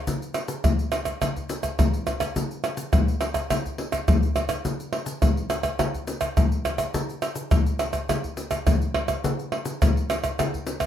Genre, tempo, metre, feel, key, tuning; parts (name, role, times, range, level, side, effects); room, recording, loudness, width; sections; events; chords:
samba; 105 BPM; 4/4; straight
tube shaker, surdo, pandeiro and tamborim; percussion; 0.1-10.9 s; -22 LUFS; equal
light reverb; -22 LUFS; side -10 dB against mid
0.0-10.9 A section